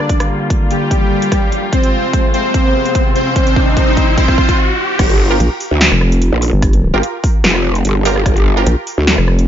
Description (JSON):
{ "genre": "heavy wobble dubstep", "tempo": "147 BPM", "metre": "4/4", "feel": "half-time", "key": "G phrygian", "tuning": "A4 = 441 Hz", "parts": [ { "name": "soft supersaw", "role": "melody", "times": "0.0-4.6 s", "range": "G3 to D5", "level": "-17 LUFS", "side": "equal", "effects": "dub echo" }, { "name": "dark studio string section", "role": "sustained chords", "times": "0.0-4.6 s", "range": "C3 to F4", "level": "-21 LUFS", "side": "left 1 dB", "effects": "sidechain pumping, low-pass filter" }, { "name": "big-room dance drum kit", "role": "drums", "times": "0.0-9.5 s", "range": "crash cymbal, hi-hat, rim click, snare drum", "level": "-18 LUFS", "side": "equal", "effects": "high-pass filter on snare, high-pass filter on hats, high-pass filter on cymbals" }, { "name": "riser", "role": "sound effects", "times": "0.3-5.0 s", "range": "none", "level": "-21 LUFS", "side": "equal", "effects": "none" }, { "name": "electronic kick drum", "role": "drums", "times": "0.1-8.3 s", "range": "none", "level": "-14 LUFS", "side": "equal", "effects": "none" }, { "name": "growl bass", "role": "bass", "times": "5.0-9.2 s", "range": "F1 to D2", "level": "-13 LUFS", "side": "equal", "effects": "chorus, overdrive" }, { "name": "orchestra-hit-like synth stab", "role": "stabs", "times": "5.3-8.7 s", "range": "F4 to Bb4", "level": "-21 LUFS", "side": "right 4 dB", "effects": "built-in reverb, dub echo" }, { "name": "vowel-sweep wobble bass", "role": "bass", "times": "5.4-9.5 s", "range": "F1 to Bb1", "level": "-12 LUFS", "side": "equal", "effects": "chorus, overdrive" } ], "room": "light reverb", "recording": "nothing above 7.5 kHz", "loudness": "-11 LUFS", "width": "side -10 dB against mid", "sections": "0.0-5.0 A section; 5.0-9.5 B section", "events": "build-up 0.0-5.0; filter sweep on string section 0.0-5.0; riser 0.3-5.0; drum fill 1.7-4.6; stop 4.6-5.0; drop 5.0-9.5", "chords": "0.0 Gm7; 1.7 Fm; 3.4 Cm; 5.0 Gm7", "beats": "| 0.09 0.50 0.91 1.32 | 1.73 2.13 2.54 2.95 | 3.36 3.77 4.18 4.58 | 4.99 5.40 5.81 6.22 | 6.62 7.03 7.44 7.85 | 8.26 8.67 9.07" }